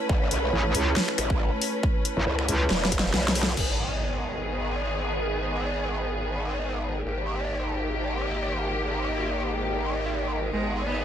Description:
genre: heavy wobble dubstep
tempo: 138 BPM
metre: 4/4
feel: swing 55% on 16ths, half-time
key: G# phrygian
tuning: A4 = 440 Hz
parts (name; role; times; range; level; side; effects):
- clear studio string section; sustained chords; 0.0-11.0 s; D#3 to B4; -31 LUFS; left 1 dB; sidechain pumping, low-pass filter
- warbly tape-like pad; texture; 0.0-11.0 s; D#4 to A5; -34 LUFS; right 1 dB; chorus, built-in reverb, sidechain pumping
- growl bass; bass; 0.1-11.0 s; E1 to C#2; -28 LUFS; equal; chorus, overdrive
- electronic kick drum; drums; 0.1-3.0 s; none; -25 LUFS; equal; overdrive
- dubstep drum kit; drums; 0.3-3.7 s; crash cymbal, finger snaps, hi-hat, snare drum; -27 LUFS; equal; none
- metallic wobble bass; bass; 0.5-2.7 s; A1 to C#2; -24 LUFS; equal; distortion, chorus, overdrive
- impact; sound effects; 3.6-5.3 s; none; -34 LUFS; equal; none
- rich cello; melody; 10.5-11.0 s; G#3 to B3; -29 LUFS; right 1 dB; none
room: light reverb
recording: none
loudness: -24 LUFS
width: side -9 dB against mid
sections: 0.0-3.6 A section; 3.6-11.0 B section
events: drop 0.0-3.6; drum fill 2.7-3.6; impact 3.6-5.3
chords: 0.0 Aadd9; 3.6 G#m; 7.1 D#/G#; 10.5 G#m

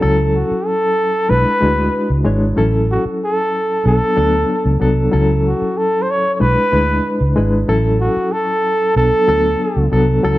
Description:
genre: lush 1970s-style soul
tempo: 94 BPM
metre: 4/4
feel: straight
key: A major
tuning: A4 = 442 Hz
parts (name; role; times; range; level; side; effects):
- reed electric piano; accompaniment; 0.0-10.4 s; F#3 to C#5; -18 LUFS; left 1 dB; fast tremolo
- vintage muted fingered electric bass; bass; 0.0-10.4 s; G#1 to D2; -16 LUFS; equal; none
- breathy flugelhorn; melody; 0.3-9.9 s; F#4 to C#5; -17 LUFS; equal; none
room: light reverb, small room reverb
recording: none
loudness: -13 LUFS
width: side -16 dB against mid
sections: 0.0-10.4 A section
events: none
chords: 0.0 A6; 1.3 E7/B; 2.6 A6; 3.9 Bm7; 5.1 A6; 6.4 E7/B; 7.7 A6; 9.0 Bm7

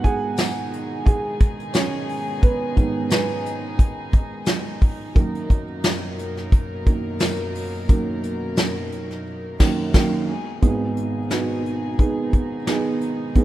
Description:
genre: piano-driven pop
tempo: 88 BPM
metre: 4/4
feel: swing 56% on 16ths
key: unclear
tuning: A4 = 438 Hz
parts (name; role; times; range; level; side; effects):
- dark upright piano; accompaniment; 0.0-13.4 s; G#1 to G#5; -25 LUFS; right 3 dB; none
- warm chamber string section; sustained chords; 0.0-13.4 s; F#2 to A#4; -31 LUFS; left 2 dB; none
- soft brush drum kit; drums; 0.0-13.4 s; crash cymbal, hi-hat, kick drum, snare drum; -18 LUFS; equal; none
- tambourine; percussion; 0.4-8.8 s; none; -38 LUFS; left 9 dB; none
room: small room ambience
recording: rough home demo mix, lossy compression artefacts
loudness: -20 LUFS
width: side -14 dB against mid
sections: 0.0-10.6 A section; 10.6-13.4 B section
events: upright piano solo 0.0-10.6; band accent 9.3-10.6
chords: 0.0 G#m; 5.2 Bmaj7/F#; 10.3 G#m

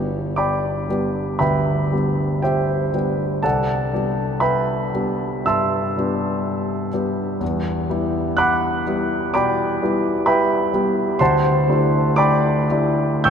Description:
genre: classical, impressionist solo piano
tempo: 53-66 BPM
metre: 4/4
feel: rubato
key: G major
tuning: A4 = 440 Hz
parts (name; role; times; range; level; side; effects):
- warm concert grand piano; solo; 0.0-13.3 s; G1 to G6; -18 LUFS; equal; none
room: wet cathedral reverb, RT60 6.7 s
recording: in a vast, echoing space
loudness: -18 LUFS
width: side -7 dB against mid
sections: 0.0-13.3 A section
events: none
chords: 0.0 G; 3.4 Cmaj9; 7.4 Em7; 11.2 D11

